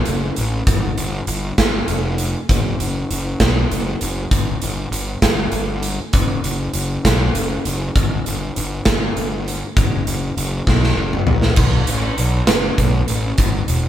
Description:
indie rock; 66 BPM (dotted quarters); 6/8; straight; A4 = 440 Hz
fuzz picked electric bass; bass; 0.1-13.9 s; E1 to B1; -20 LUFS; equal; overdrive
big rock drum kit; drums; 0.1-13.8 s; crash cymbal, hi-hat, kick drum, snare drum, toms; -18 LUFS; equal
light reverb; band playing live in one room; -16 LUFS; side -11 dB against mid
0.0-11.6 A section; 11.6-13.9 B section
drum fill 10.7-11.6

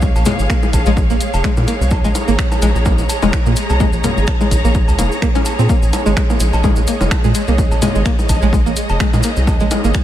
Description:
minimal techno; 127 BPM; 4/4; swing 56% on 16ths; Bb minor; A4 = 440 Hz
rubbery square bass; bass; 0.0-9.9 s; F1 to Bb2; -16 LUFS; equal; sidechain pumping
electronic kick drum; drums; 0.0-10.0 s; -17 LUFS; equal
maracas; percussion; 0.0-10.0 s; -30 LUFS; left 2 dB
dark studio string section; texture; 0.0-10.0 s; Ab4 to Bb5; -23 LUFS; right 2 dB; sidechain pumping
cowbell, bongos and congas; percussion; 0.2-9.8 s; -24 LUFS; left 2 dB
string-like resonator pluck; riff; 0.3-9.9 s; Ab3 to Db4; -20 LUFS; equal; chorus, sidechain pumping, tape echo
punchy analog drum machine; drums; 0.3-10.0 s; finger snaps, hi-hat; -27 LUFS; right 1 dB
light reverb; -12 LUFS; side -12 dB against mid
0.0-10.0 A section
0.0 Bbm7

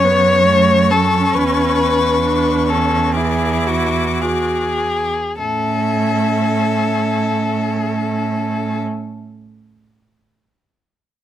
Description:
classical, slow romantic movement for string quartet; 48-71 BPM; 4/4; rubato; A major; A4 = 439 Hz
warm violin; melody; 0.0-8.8 s; E5 to D6; -24 LUFS; left 9 dB
warm violin; second line; 0.0-8.8 s; F#4 to C#5; -18 LUFS; left 3 dB
warm viola; accompaniment; 0.0-8.8 s; A3 to F#4; -22 LUFS; right 2 dB
clear cello; bass; 0.0-8.8 s; E2 to A2; -19 LUFS; right 4 dB
little or no reverb; close, detailed microphones; -14 LUFS; side -11 dB against mid
0.0-5.4 A section; 5.4-9.8 B section
slowing down 0.0-5.4
0.0 F#5; 1.3 Bm11/E; 3.2 E7; 5.4 A

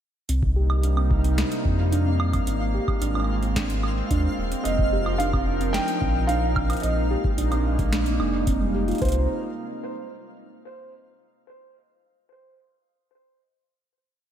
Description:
IDM; 110 BPM; 4/4; straight; C minor; A4 = 440 Hz
warbly tape-like pad; sustained chords; 0.3-9.3 s; C3 to Bb4; -29 LUFS; equal; chorus, built-in reverb
harp-like synth pluck; arpeggios; 0.3-9.3 s; G3 to G4; -30 LUFS; right 4 dB; chorus, diffuse ambient delay
warm sub bass; bass; 0.3-9.3 s; Eb1 to F2; -24 LUFS; equal
booming analog drum machine; drums; 0.3-9.2 s; hi-hat, snare drum, woodblock; -33 LUFS; right 1 dB; overdrive, tape echo
twinkling granular texture; texture; 0.8-9.0 s; F4 to F5; -38 LUFS; equal; built-in reverb, lush chorus
electronic kick drum; drums; 0.4-9.1 s; -27 LUFS; equal; overdrive
felt-muted upright piano; melody; 4.6-9.3 s; C5 to G5; -30 LUFS; right 1 dB; analog delay
moderate lush hall reverb, RT60 2.1 s; dreamy mix soaked in reverb; -21 LUFS; side -10 dB against mid
0.3-9.0 groove; 9.0-11.2 final chord
filter sweep on synth pluck 0.3-9.0
0.3 Cm7; 2.5 Abadd9; 4.7 F7sus4; 6.8 Bb7sus4; 9.0 N.C.

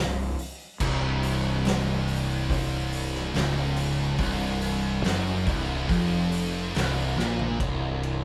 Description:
stoner and doom metal; 71 BPM; 4/4; straight; A4 = 439 Hz
heavy high-gain guitar; riff; 0.0-7.6 s; B#1 to A#2; -35 LUFS; equal; distortion
thick fuzz guitar; riff; 0.0-8.2 s; B#1 to A#2; -35 LUFS; equal
thick fuzz guitar; riff; 0.0-8.2 s; B#1 to A#2; -31 LUFS; equal; distortion
fuzz fingered electric bass; bass; 0.0-8.2 s; B#0 to A#1; -34 LUFS; equal; overdrive
oversized low-tuned drum kit; drums; 0.4-8.2 s; crash cymbal, hi-hat, kick drum, ride cymbal, snare drum, toms; -33 LUFS; equal
moderate studio reverb, RT60 0.6 s; band playing live in one room; -27 LUFS; mono
0.0-7.6 A section
drum fill 7.2-7.6
0.0 F#maj7#11/B#; 7.6 N.C.

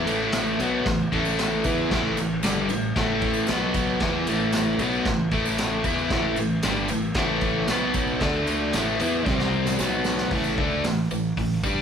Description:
garage rock duo or trio; 114 BPM; 4/4; straight; A minor; A4 = 441 Hz
overdriven electric guitar; riff; 0.0-11.8 s; G2 to G4; -23 LUFS; equal
fuzz fingered electric bass; bass; 0.0-11.8 s; G1 to G2; -32 LUFS; equal; overdrive
vintage drum kit; drums; 0.1-11.8 s; crash cymbal, hi-hat, kick drum, ride cymbal, snare drum; -28 LUFS; equal
tambourine; percussion; 0.1-11.8 s; -41 LUFS; right 6 dB
moderate large studio reverb, RT60 1.3 s; band playing live in one room; -21 LUFS; side -7 dB against mid
0.0-10.3 A section; 10.3-11.8 B section
drum fill 9.3-10.3
0.0 A5; 3.5 B5; 4.0 A5; 7.7 B5; 8.2 D5; 8.7 A5; 9.3 C5; 9.8 B5; 10.3 A5

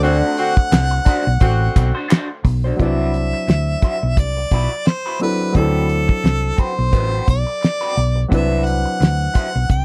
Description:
lush 1970s-style soul; 87 BPM; 4/4; swing 58% on 16ths; A4 = 440 Hz
clear harmonica; melody; 0.0-9.8 s; A4 to G5; -25 LUFS; equal
warm baby grand piano; accompaniment; 0.0-9.8 s; F#3 to D5; -26 LUFS; equal
electric guitar through a small old amp; riff; 0.0-9.6 s; C4 to C5; -28 LUFS; equal; wah
mellow horn section; stabs; 0.0-1.9 s; D3 to F#4; -24 LUFS; equal
hollow-body short-scale fingered electric bass; bass; 0.0-9.8 s; A1 to D2; -21 LUFS; equal
cloth-damped thuddy drum kit; drums; 0.0-9.8 s; hi-hat, kick drum, snare drum; -17 LUFS; equal
group handclap; percussion; 0.7-2.3 s; -34 LUFS; equal
little or no reverb; dry, close 1970s-style studio recording; -18 LUFS; mono
0.0-2.8 A section; 2.8-9.8 B section
band accent 0.0-2.8
0.0 D7; 2.8 Cmaj9#11; 5.5 D13; 8.3 Cmaj9#11

